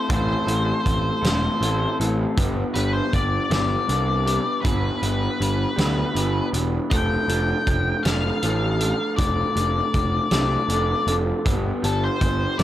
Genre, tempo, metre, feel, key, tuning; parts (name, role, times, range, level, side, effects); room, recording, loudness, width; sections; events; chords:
quiet-loud alternative rock; 53 BPM (dotted quarters); 6/8; straight; A4 = 438 Hz
octave-fuzz lead guitar; melody; 0.0-12.6 s; A4 to G5; -26 LUFS; left 2 dB; distortion, analog delay
electric guitar through a small old amp; arpeggios; 0.0-12.6 s; A2 to A4; -26 LUFS; left 1 dB; analog delay
fuzz picked electric bass; bass; 0.1-12.6 s; E1 to D2; -24 LUFS; equal; overdrive
loose indie drum kit; drums; 0.1-12.6 s; hi-hat, kick drum, snare drum; -25 LUFS; equal
little or no reverb; -20 LUFS; side -13 dB against mid
0.0-12.6 A section
0.0 Am; 2.4 G; 6.9 Dm/F; 11.5 G